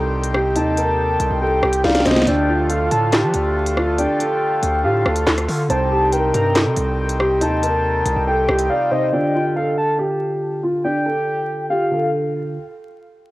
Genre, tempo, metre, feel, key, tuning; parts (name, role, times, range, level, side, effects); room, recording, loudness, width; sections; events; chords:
hip hop, drill; 140 BPM; 4/4; half-time; D phrygian; A4 = 440 Hz
dark concert grand piano; melody; 0.0-12.5 s; D4 to D5; -21 LUFS; equal; low-pass filter, cassette tape, analog delay
overdriven tine electric piano; accompaniment; 0.0-12.6 s; C3 to A4; -27 LUFS; right 2 dB; wide subtle chorus, low-pass filter, cassette tape
accordion; sustained chords; 0.0-9.1 s; D3 to G4; -26 LUFS; left 1 dB; cassette tape
distorted 808-style bass; bass; 0.0-8.7 s; C2 to F3; -22 LUFS; equal; distortion
drill drum kit; drums; 0.2-8.7 s; handclaps, hi-hat, rim click, snare drum; -20 LUFS; equal; cassette tape
soft octave-layered synth lead; second line; 0.6-12.1 s; Eb5 to Bb5; -22 LUFS; equal; chorus, phaser, cassette tape, analog delay
light reverb; home recording on cassette, vinyl crackle; -16 LUFS; side -18 dB against mid
0.0-9.1 A section; 9.1-12.6 B section
drum fill 1.8-2.3; drums muted 8.7-9.1; filter sweep 9.1-12.6
0.0 Cm; 2.3 Dm; 5.7 Cm; 9.1 Dm